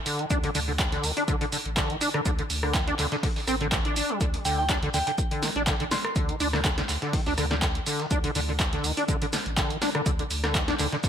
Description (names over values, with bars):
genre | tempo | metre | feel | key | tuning
acid house | 123 BPM | 4/4 | swing 54% on 16ths | unclear | A4 = 440 Hz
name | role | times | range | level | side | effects
acid bass, saw | riff | 0.1-11.1 s | D2 to D4 | -28 LUFS | equal | tube saturation, ensemble chorus, digital delay
dusty soul sampler-style drum kit | drums | 0.1-11.1 s | hi-hat, shaker, snare drum | -37 LUFS | right 1 dB | overdrive, high-pass filter on snare, sidechain pumping on perc, high-pass filter on perc, sidechain pumping on hats, high-pass filter on hats, high-pass filter on room
punchy analog drum machine | drums | 0.1-11.1 s | handclaps, hi-hat, rim click, snare drum | -30 LUFS | equal | none
warm sub bass | bass | 0.3-10.9 s | A1 to D2 | -32 LUFS | equal | tube saturation, sidechain pumping
electronic kick drum | drums | 0.3-11.1 s | none | -28 LUFS | equal | overdrive
glassy synth bell | melody | 4.5-6.1 s | G5 to C6 | -31 LUFS | right 1 dB | chorus, tremolo, ping-pong delay
room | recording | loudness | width
light reverb | none | -24 LUFS | side -8 dB against mid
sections
0.0-11.1 A section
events
none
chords
0.0 D5